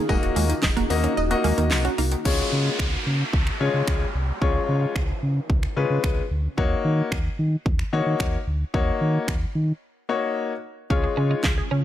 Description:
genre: dance-pop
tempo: 111 BPM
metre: 4/4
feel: straight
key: unclear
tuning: A4 = 441 Hz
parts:
  - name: glassy FM pad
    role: sustained chords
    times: 0.0-2.2, 10.9-11.8 s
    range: Ab3 to Gb4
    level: -31 LUFS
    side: left 1 dB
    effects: ensemble chorus, built-in reverb, sidechain pumping
  - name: wide unison pluck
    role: arpeggios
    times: 0.0-2.2, 10.9-11.8 s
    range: Eb3 to F5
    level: -31 LUFS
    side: right 2 dB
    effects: phaser, sidechain pumping, digital delay
  - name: twelve-string electric guitar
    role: riff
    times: 0.0-2.1, 11.0-11.8 s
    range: Ab3 to Eb4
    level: -29 LUFS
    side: right 7 dB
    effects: wide subtle chorus
  - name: clear concert grand piano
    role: accompaniment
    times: 0.1-11.5 s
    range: Ab3 to Eb5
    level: -26 LUFS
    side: left 5 dB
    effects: sidechain pumping
  - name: sub bass with octave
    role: bass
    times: 0.1-11.8 s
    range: Eb1 to Eb3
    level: -24 LUFS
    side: equal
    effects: sidechain pumping
  - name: pop drum kit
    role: drums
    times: 0.1-11.6 s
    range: crash cymbal, finger snaps, handclaps, hi-hat, kick drum, snare drum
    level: -25 LUFS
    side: equal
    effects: none
  - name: tambourine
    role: percussion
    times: 0.1-2.1 s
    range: none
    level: -39 LUFS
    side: left 7 dB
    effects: none
  - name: downlifter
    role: sound effects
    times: 2.3-6.6 s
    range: none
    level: -31 LUFS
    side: right 1 dB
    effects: none
room: digital ambience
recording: none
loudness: -21 LUFS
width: side -12 dB against mid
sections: 0.0-2.3 A section; 2.3-11.8 B section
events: kick muted 1.2-2.3; break 9.8-10.9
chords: 0.1 Ebm; 2.3 Db; 6.6 Ebm7; 10.9 Db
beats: | 0.09 0.63 1.17 1.71 | 2.25 2.79 3.33 3.88 | 4.42 4.96 5.50 6.04 | 6.58 7.12 7.66 8.20 | 8.74 9.28 9.82 10.36 | 10.90 11.44

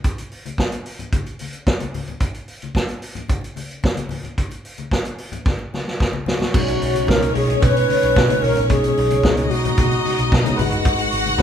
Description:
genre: disco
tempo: 111 BPM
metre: 4/4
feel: straight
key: B major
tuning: A4 = 440 Hz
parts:
  - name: vintage drum kit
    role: drums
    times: 0.0-11.4 s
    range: crash cymbal, hi-hat, kick drum, snare drum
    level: -21 LUFS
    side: equal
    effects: none
  - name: congas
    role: percussion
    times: 0.2-11.4 s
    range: none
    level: -30 LUFS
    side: left 4 dB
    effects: none
  - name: breathy wooden-headed alto flute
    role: melody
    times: 6.3-10.6 s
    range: F#4 to B4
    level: -21 LUFS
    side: right 2 dB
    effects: none
  - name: rich studio string section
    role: second line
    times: 6.5-11.4 s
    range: C#4 to F#5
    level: -21 LUFS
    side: left 2 dB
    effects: none
  - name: mellow tine electric piano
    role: accompaniment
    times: 6.5-11.4 s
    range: B2 to B4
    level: -24 LUFS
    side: left 3 dB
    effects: fast stereo tremolo
  - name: hollow-body short-scale picked electric bass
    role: bass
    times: 6.5-11.4 s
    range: G1 to B2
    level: -23 LUFS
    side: equal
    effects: none
room: light reverb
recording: band playing live in one room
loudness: -17 LUFS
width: side -9 dB against mid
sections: 0.0-6.5 A section; 6.5-11.4 B section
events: drum fill 5.5-6.5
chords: 0.0 N.C.; 6.5 B69; 10.6 G#m7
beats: | 0.04 0.58 1.13 1.67 | 2.21 2.76 3.30 3.84 | 4.38 4.92 5.46 6.00 | 6.54 7.08 7.62 8.16 | 8.70 9.24 9.77 10.31 | 10.85 11.38

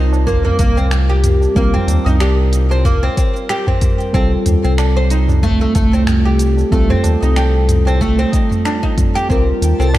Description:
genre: organic downtempo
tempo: 93 BPM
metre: 4/4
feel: swing 56% on 16ths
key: C dorian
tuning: A4 = 440 Hz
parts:
  - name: muted felt-like synth keys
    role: accompaniment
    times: 0.0-10.0 s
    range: G3 to Bb4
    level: -21 LUFS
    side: right 1 dB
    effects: chorus, sidechain pumping, digital delay
  - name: oud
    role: arpeggios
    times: 0.0-9.9 s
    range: A3 to C5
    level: -19 LUFS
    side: right 1 dB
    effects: digital delay
  - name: round analog bass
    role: bass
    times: 0.0-10.0 s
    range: C2 to Eb2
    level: -14 LUFS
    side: equal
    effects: sidechain pumping
  - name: deep house drum kit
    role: drums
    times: 0.1-10.0 s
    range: finger snaps, hi-hat, shaker, toms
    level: -22 LUFS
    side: equal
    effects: none
  - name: tabla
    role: percussion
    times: 0.1-10.0 s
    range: none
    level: -25 LUFS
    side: right 1 dB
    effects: none
  - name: electronic kick drum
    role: drums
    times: 0.3-9.4 s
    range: none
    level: -17 LUFS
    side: equal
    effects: none
  - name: twinkling granular texture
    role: texture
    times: 9.7-10.0 s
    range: A4 to A5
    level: -28 LUFS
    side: equal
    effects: built-in reverb
room: light reverb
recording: dark, warm production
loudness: -12 LUFS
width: side -15 dB against mid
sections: 0.0-10.0 A section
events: none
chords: 0.0 Cm7; 4.1 F7/C; 9.3 Cm7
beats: 0.27 0.91 | 1.56 2.20 2.85 3.49 | 4.14 4.78 5.43 6.07 | 6.72 7.37 8.01 8.65 | 9.30 9.95

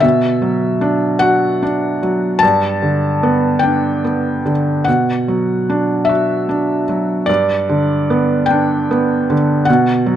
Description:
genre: classical, lyrical solo piano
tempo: 50 BPM (dotted quarters)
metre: 6/8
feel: rubato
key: unclear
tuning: A4 = 440 Hz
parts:
  - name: felt-muted upright piano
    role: solo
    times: 0.0-10.2 s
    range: G2 to A5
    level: -13 LUFS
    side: equal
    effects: none
room: light reverb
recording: close, detailed microphones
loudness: -13 LUFS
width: side -10 dB against mid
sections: 0.0-10.2 A section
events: none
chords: 0.0 Bm; 2.4 G; 4.9 Bm; 7.3 G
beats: | 0.04 1.22 | 2.42 3.63 | 4.87 6.09 | 7.29 8.50 | 9.68

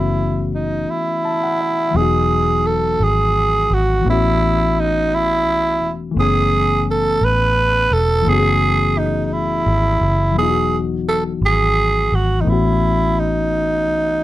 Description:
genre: slow six-eight R&B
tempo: 57 BPM (dotted quarters)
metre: 6/8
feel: straight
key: F# dorian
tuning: A4 = 441 Hz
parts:
  - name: growling tenor saxophone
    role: melody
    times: 0.0-14.2 s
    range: D#4 to B4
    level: -17 LUFS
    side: right 2 dB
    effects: none
  - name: reed electric piano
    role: accompaniment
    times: 0.0-14.2 s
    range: E3 to A5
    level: -22 LUFS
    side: left 6 dB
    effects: overdrive
  - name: vintage muted fingered electric bass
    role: bass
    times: 0.0-14.2 s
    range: E1 to B1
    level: -20 LUFS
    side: equal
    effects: none
room: little or no reverb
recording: dry, close 1970s-style studio recording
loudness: -15 LUFS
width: side -15 dB against mid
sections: 0.0-1.9 A section; 1.9-14.2 B section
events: reed electric piano fill 0.9-1.9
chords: 0.0 F#m11; 1.9 Emaj9; 4.0 A69; 6.2 F#m11; 10.4 Emaj9; 12.5 A69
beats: 0.89 | 1.94 2.99 | 4.04 5.10 | 6.15 7.20 | 8.26 9.31 | 10.36 11.41 | 12.47 13.52

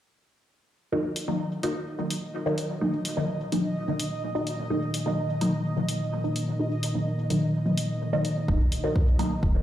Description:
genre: dub techno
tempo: 127 BPM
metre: 4/4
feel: straight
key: Eb minor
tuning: A4 = 440 Hz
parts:
  - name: dark analog pad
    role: sustained chords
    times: 1.6-9.6 s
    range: Bb3 to Bb4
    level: -31 LUFS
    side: equal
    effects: chorus, sidechain pumping
  - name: filtered dub chord stab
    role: stabs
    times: 0.9-9.6 s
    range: Eb3 to Eb4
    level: -28 LUFS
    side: equal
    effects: phaser, sidechain pumping, dub echo
  - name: bubbling stepped-filter texture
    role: texture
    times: 1.9-9.6 s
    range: Eb5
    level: -38 LUFS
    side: right 3 dB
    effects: chorus, built-in reverb, sidechain pumping
  - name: electronic hi-hat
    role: drums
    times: 1.2-9.3 s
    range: none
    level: -35 LUFS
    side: left 1 dB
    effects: overdrive
  - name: warm sub bass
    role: bass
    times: 8.5-9.6 s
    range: Eb1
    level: -27 LUFS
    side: equal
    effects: sidechain pumping
  - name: electronic kick drum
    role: drums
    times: 8.5-9.5 s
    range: none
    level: -23 LUFS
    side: equal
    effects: overdrive
room: wet echo chamber reverb, RT60 1.4 s, digital ambience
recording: played on a big sound system in a bare room, large studio reverb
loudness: -25 LUFS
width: side -12 dB against mid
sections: 0.9-9.6 A section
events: filter sweep on analog synth pad 0.9-9.6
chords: 0.9 Ebm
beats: | 0.92 1.40 1.87 2.34 | 2.81 3.29 3.76 4.23 | 4.70 5.18 5.65 6.12 | 6.59 7.07 7.54 8.01 | 8.48 8.96 9.43

